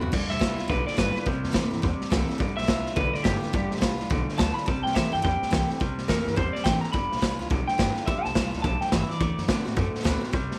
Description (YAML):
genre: rockabilly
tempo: 212 BPM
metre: 4/4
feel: swing 62% on 8ths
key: G mixolydian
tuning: A4 = 440 Hz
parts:
  - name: picked steel-string acoustic guitar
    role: accompaniment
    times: 0.0-10.6 s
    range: G2 to F#4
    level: -34 LUFS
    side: equal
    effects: none
  - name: electric guitar through a small old amp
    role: riff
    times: 0.0-10.6 s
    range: G2 to B3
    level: -36 LUFS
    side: equal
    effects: none
  - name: upright bass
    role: bass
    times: 0.0-10.6 s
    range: G1 to A2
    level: -34 LUFS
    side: equal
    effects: none
  - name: raw garage drum kit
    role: drums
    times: 0.0-10.5 s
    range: crash cymbal, hi-hat, kick drum, snare drum, toms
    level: -29 LUFS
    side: equal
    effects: none
  - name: electric guitar through a small old amp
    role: melody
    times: 0.3-9.9 s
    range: G4 to B5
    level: -32 LUFS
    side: equal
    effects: tape echo
room: light reverb, small room reverb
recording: none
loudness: -26 LUFS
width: mono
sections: 0.1-10.6 A section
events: clean electric guitar solo 0.1-10.6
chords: 0.1 G7; 1.3 C7; 2.4 G7; 4.7 C7; 6.9 G7; 9.2 D7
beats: | 0.13 0.41 0.70 0.98 | 1.26 1.55 1.83 2.12 | 2.40 2.69 2.97 3.25 | 3.54 3.82 4.11 4.39 | 4.67 4.96 5.24 5.52 | 5.81 6.09 6.37 6.66 | 6.94 7.22 7.51 7.79 | 8.07 8.36 8.64 8.92 | 9.20 9.49 9.77 10.05 | 10.33